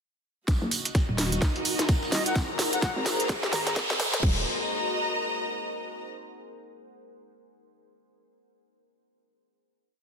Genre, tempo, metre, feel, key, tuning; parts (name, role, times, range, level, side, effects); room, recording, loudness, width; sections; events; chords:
bass house; 128 BPM; 4/4; swing 59% on 16ths; Eb dorian; A4 = 439 Hz
deep dark ambient pad; sustained chords; 1.3-4.4 s; Eb4 to Gb5; -36 LUFS; left 1 dB; chorus, built-in reverb, sidechain pumping
hollow knocking FM bass; bass; 0.5-4.4 s; Eb1 to Ab1; -34 LUFS; equal; tube saturation, sidechain pumping, high-pass filter
dusty soul sampler-style drum kit; drums; 0.5-4.2 s; hi-hat, snare drum, tambourine; -39 LUFS; left 3 dB
electronic kick drum; drums; 0.5-4.3 s; -27 LUFS; equal
garage drum kit; drums; 0.5-4.3 s; crash cymbal, hi-hat, snare drum; -29 LUFS; equal
tambourine; percussion; 0.5-4.2 s; -37 LUFS; right 5 dB
riser; sound effects; 2.0-4.2 s; -35 LUFS; right 1 dB
warm studio string section; texture; 0.5-6.1 s; Gb4 to Bb5; -32 LUFS; left 1 dB; sidechain pumping
pulsing pluck wobble bass; bass; 1.1-3.7 s; Eb1 to Ab1; -29 LUFS; equal; chorus, overdrive, sidechain pumping
reedy concert flute; melody; 2.1-3.7 s; Eb5 to Bb5; -35 LUFS; left 2 dB; tape echo
moderate lush hall reverb, RT60 1.9 s, digital ambience; dense, heavily limited modern master, high-pass filter; -24 LUFS; side -6 dB against mid
0.5-4.2 build; 4.2-6.1 final chord
build-up 0.5-4.2; drum fill 0.5-4.2; filter sweep 0.5-4.2; riser 2.0-4.2
0.5 Ebm; 2.4 Abadd9; 4.2 Ebm